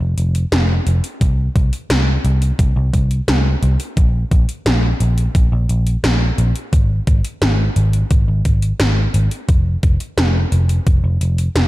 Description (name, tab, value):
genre	synthwave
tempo	87 BPM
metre	4/4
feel	straight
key	F minor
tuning	A4 = 440 Hz
part	picked electric bass	bass	0.0-11.7 s	F1 to C2	-15 LUFS	equal	none
part	80s electronic pad drums	drums	0.2-11.7 s	hi-hat, snare drum	-21 LUFS	equal	overdrive
part	electronic kick drum	drums	1.2-11.0 s	none	-15 LUFS	equal	none
room	little or no reverb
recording	dark, warm production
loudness	-14 LUFS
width	side -17 dB against mid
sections	0.0-11.7 A section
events	none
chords	none